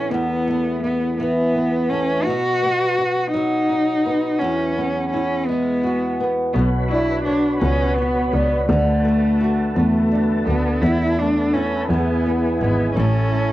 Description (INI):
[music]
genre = pop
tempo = 56 BPM (dotted quarters)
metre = 6/8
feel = straight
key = unclear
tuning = A4 = 442 Hz
[part]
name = warm cello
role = melody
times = 0.0-13.5 s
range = A3 to F#4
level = -20 LUFS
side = equal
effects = cassette tape
[part]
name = flamenco guitar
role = accompaniment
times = 0.0-13.5 s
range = E2 to C#5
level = -22 LUFS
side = equal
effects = double-tracked left and right, cassette tape
[part]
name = tonewheel organ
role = sustained chords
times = 6.5-13.5 s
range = E4 to B5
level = -28 LUFS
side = equal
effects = overdrive, chorus vibrato, slow rotary speaker, cassette tape
[part]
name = clear double bass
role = bass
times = 6.5-13.5 s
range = G#1 to E2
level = -21 LUFS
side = equal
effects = none
[sound]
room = moderate studio reverb, RT60 0.5 s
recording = home recording on cassette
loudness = -17 LUFS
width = side -15 dB against mid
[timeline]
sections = 0.0-13.5 A section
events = none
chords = 0.1 Esus4; 2.3 B; 4.4 Eadd9; 6.5 Bmadd9; 8.7 D; 10.8 Esus4; 11.9 E; 13.0 A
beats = | 0.11 1.18 | 2.26 3.33 | 4.40 5.47 | 6.54 7.61 | 8.68 9.75 | 10.82 11.89 | 12.96